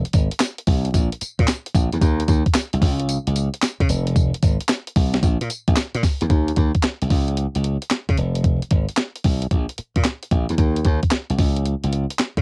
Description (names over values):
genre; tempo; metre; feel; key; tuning
R&B, new jack swing; 112 BPM; 4/4; swing 67% on 16ths; F minor; A4 = 436 Hz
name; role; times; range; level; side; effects
glassy slap bass; bass; 0.0-12.4 s; F1 to Db3; -20 LUFS; equal; none
clean 12-bit digital drum machine; drums; 0.1-12.4 s; handclaps, hi-hat, kick drum, snare drum, tambourine; -19 LUFS; equal; none
room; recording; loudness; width
little or no reverb; home recording on cassette; -18 LUFS; side -35 dB against mid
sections
0.0-6.3 A section; 6.3-12.4 B section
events
none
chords
none